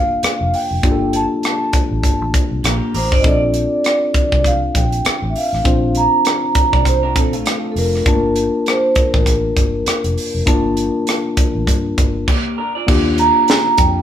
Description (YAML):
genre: lush 1970s-style soul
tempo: 100 BPM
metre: 4/4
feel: swing 58% on 16ths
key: unclear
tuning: A4 = 440 Hz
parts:
  - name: vibraphone with soft mallets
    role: melody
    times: 0.0-14.0 s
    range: A4 to Bb5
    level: -18 LUFS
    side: right 2 dB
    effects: none
  - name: tine electric piano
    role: accompaniment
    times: 0.0-14.0 s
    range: A3 to A5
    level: -21 LUFS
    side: left 3 dB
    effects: none
  - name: vintage muted fingered electric bass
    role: bass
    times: 0.0-14.0 s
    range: F1 to G2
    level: -21 LUFS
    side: equal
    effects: none
  - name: tight funk drum kit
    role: drums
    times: 0.2-13.9 s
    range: crash cymbal, hi-hat, kick drum, rim click, snare drum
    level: -17 LUFS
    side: equal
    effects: none
  - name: electric guitar through a small old amp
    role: riff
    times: 2.6-8.0, 12.3-13.0 s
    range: A3 to D5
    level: -22 LUFS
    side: right 2 dB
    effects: phaser
room: moderate large studio reverb, RT60 0.9 s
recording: band playing live in one room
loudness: -13 LUFS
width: side -10 dB against mid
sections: 0.0-12.9 A section; 12.9-14.0 B section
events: none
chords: 0.0 Gm9; 3.2 Bbmaj9; 8.1 Gm9; 12.9 Ebmaj9